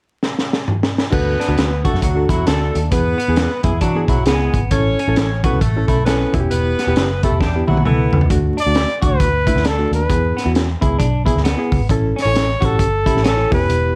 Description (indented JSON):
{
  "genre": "uptempo 1960s-style soul",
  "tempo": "134 BPM",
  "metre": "4/4",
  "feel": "swing 61% on 8ths",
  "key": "D major",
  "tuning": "A4 = 440 Hz",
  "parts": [
    { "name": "crunchy breakbeat drum kit", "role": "drums", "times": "0.2-13.8 s", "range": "crash cymbal, hi-hat, kick drum, snare drum, toms", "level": "-21 LUFS", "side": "equal", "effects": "none" },
    { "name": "warm saxophone section", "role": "second line", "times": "1.1-8.2 s", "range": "E3 to C#5", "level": "-25 LUFS", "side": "equal", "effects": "none" },
    { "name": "barky reed electric piano", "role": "accompaniment", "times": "1.1-14.0 s", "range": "A3 to B4", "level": "-25 LUFS", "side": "equal", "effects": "overdrive, fast tremolo" },
    { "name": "vintage muted picked electric bass", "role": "bass", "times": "1.1-13.9 s", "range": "E1 to E3", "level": "-21 LUFS", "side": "equal", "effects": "none" },
    { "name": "semi-hollow electric guitar", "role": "riff", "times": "1.4-13.7 s", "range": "B3 to F#4", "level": "-28 LUFS", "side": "equal", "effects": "subtle chorus" },
    { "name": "warm trumpet", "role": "melody", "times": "8.6-14.0 s", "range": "A4 to D5", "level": "-21 LUFS", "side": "equal", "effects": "none" }
  ],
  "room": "light reverb, small room ambience",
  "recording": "dark, warm production, vinyl crackle",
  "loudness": "-17 LUFS",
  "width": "mono",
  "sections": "0.0-1.1 A section; 1.1-8.3 B section; 8.3-14.0 C section",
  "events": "drum fill 0.2-1.1, 7.4-8.3",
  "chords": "0.0 N.C.; 1.1 D; 2.9 E; 4.7 A; 6.3 Em; 8.3 D; 10.1 E; 11.9 A"
}